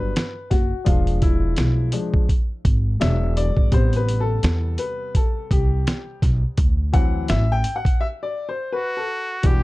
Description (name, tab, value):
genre	hip hop, jazz-hop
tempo	84 BPM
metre	4/4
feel	swing 58% on 16ths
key	unclear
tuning	A4 = 441 Hz
part	clear upright piano	accompaniment	0.0-9.6 s	C3 to G5	-26 LUFS	left 4 dB	plate reverb
part	upright bass	bass	0.0-9.6 s	E1 to E2	-21 LUFS	equal	none
part	dusty soul sampler-style drum kit	drums	0.2-9.6 s	hi-hat, kick drum, snare drum	-20 LUFS	equal	none
part	trumpet with straight mute	melody	8.7-9.6 s	F#4 to G4	-26 LUFS	equal	plate reverb
room	little or no reverb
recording	dark, warm production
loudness	-18 LUFS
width	side -19 dB against mid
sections	0.0-9.4 A section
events	upright piano solo 0.0-9.4; break 8.0-9.4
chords	0.0 Em9 (rootless); 0.9 E7b9; 3.0 E7; 3.7 Am9; 6.6 D9